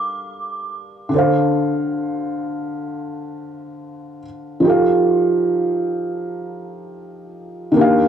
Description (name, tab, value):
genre	R&B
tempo	free time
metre	none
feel	none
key	unclear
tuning	A4 = 441 Hz
part	synth chime	melody	0.0-1.1 s	D6	-27 LUFS	right 3 dB	ensemble chorus, tape echo
part	felt-muted upright piano	accompaniment	0.0-8.1 s	D3 to F5	-18 LUFS	equal	none
room	light reverb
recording	worn, warbling old tape, cassette tape, warbly pitch drift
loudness	-17 LUFS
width	side -8 dB against mid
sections	0.0-7.8 A section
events	none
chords	0.0 Gm9; 1.1 Dm7; 4.6 F9